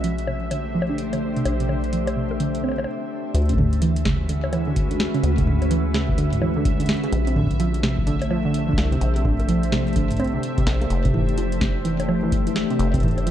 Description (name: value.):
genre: IDM.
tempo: 127 BPM.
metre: 4/4.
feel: swing 62% on 16ths.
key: unclear.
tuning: A4 = 440 Hz.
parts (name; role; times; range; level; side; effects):
glassy FM pad; sustained chords; 0.0-13.3 s; G#3 to E5; -27 LUFS; left 2 dB; ensemble chorus, built-in reverb, vintage 12-bit sampler grit, shimmer reverb.
warbly dusty pluck; arpeggios; 0.0-13.3 s; C3 to C4; -25 LUFS; right 2 dB; chorus, ping-pong delay.
deep acid bass; bass; 0.0-13.3 s; F1 to D2; -24 LUFS; equal; none.
booming analog drum machine; drums; 0.0-13.3 s; bongos, hi-hat, snare drum, toms; -28 LUFS; equal; none.
bubbling stepped-filter texture; texture; 0.0-13.3 s; E5; -36 LUFS; right 5 dB; chorus, built-in reverb, shimmer reverb.
electronic kick drum; drums; 3.5-13.0 s; none; -25 LUFS; equal; none.
room: light reverb.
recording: dark, warm production.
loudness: -19 LUFS.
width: side -11 dB against mid.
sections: 0.0-3.3 A section; 3.3-13.3 B section.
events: filter sweep on drum 0.0-3.3; filter sweep on synth pluck 0.0-3.3; break 2.9-3.3.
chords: 0.0 Bbmaj9; 3.3 Dmaj9; 7.1 Bbmaj9; 10.9 Fmaj7.